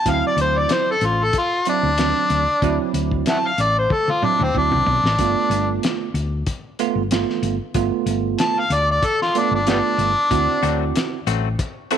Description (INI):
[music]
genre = straight-eighth soul blues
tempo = 94 BPM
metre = 4/4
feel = swing 54% on 16ths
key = D mixolydian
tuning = A4 = 440 Hz
[part]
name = overdriven harmonica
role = melody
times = 0.0-10.9 s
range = G3 to A5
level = -19 LUFS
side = left 1 dB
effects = none
[part]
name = bell-like tine electric piano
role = accompaniment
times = 0.1-12.0 s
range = F#3 to A4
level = -24 LUFS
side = right 14 dB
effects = analog chorus
[part]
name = hollow-body short-scale fingered electric bass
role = bass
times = 0.1-11.5 s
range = G1 to D2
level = -23 LUFS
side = left 2 dB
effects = none
[part]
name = cloth-damped thuddy drum kit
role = drums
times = 0.1-12.0 s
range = hi-hat, kick drum, snare drum, toms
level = -25 LUFS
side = left 2 dB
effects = none
[part]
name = direct-recorded clean electric guitar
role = stabs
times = 10.6-12.0 s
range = F#3 to F#4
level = -26 LUFS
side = left 16 dB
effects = none
[sound]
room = moderate plate reverb, RT60 2.6 s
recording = 1960s-style stereo with parts hard left and right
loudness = -17 LUFS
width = side -9 dB against mid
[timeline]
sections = 0.0-12.0 A section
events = harmonica solo 0.0-12.0; drum fill 3.9-5.2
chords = 0.1 D7; 5.2 G7; 10.3 D7